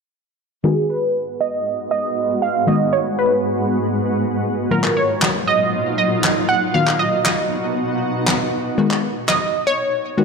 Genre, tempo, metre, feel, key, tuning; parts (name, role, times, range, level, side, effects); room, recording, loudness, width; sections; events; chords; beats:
dance-pop; 118 BPM; 4/4; straight; G# dorian; A4 = 438 Hz
analog pluck; melody; 0.6-10.2 s; G#4 to F#5; -19 LUFS; right 2 dB; chorus, low-pass filter, ping-pong delay
analog pluck; accompaniment; 0.6-10.2 s; A#2 to F#4; -20 LUFS; left 3 dB; chorus, low-pass filter
shimmering ambient pad; sustained chords; 1.3-8.8 s; G#2 to F#4; -22 LUFS; right 1 dB; chorus, built-in reverb, low-pass filter
handclaps and snare drum; drums; 4.8-9.4 s; -21 LUFS; left 1 dB
moderate lush hall reverb, RT60 2.2 s; dark, warm production; -16 LUFS; side -5 dB against mid
0.6-8.8 A section; 8.8-10.2 B section
filter sweep 0.6-8.8
0.6 G#m7; 4.7 D#madd9/A#; 6.7 B; 8.8 G#m7
| 0.64 1.15 1.66 2.17 | 2.68 3.19 3.69 4.20 | 4.71 5.22 5.73 6.24 | 6.75 7.25 7.76 8.27 | 8.78 9.29 9.80